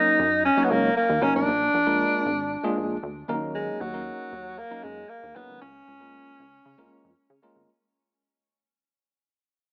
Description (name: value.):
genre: early-eighties boogie funk.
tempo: 116 BPM.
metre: 4/4.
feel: straight.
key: Eb minor.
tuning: A4 = 441 Hz.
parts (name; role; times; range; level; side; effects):
warm alto saxophone; melody; 0.0-7.4 s; Gb3 to Eb4; -26 LUFS; equal; none.
tine electric piano; accompaniment; 0.0-7.7 s; Gb3 to Db5; -32 LUFS; equal; none.
plucky analog bass; bass; 0.2-7.7 s; F1 to Db3; -35 LUFS; equal; none.
room: moderate echo chamber reverb, RT60 2.3 s.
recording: AM radio sound.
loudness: -24 LUFS.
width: mono.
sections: 0.0-7.7 A section.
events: fade-out 0.0-7.7.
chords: 0.0 Ebm7; 1.5 Bb7; 3.3 Ebm7; 5.6 Bbm7/Db.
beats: 0.44 0.96 | 1.48 2.00 2.51 3.03 | 3.55 4.06 4.58 5.10 | 5.62 6.13 6.65 7.17.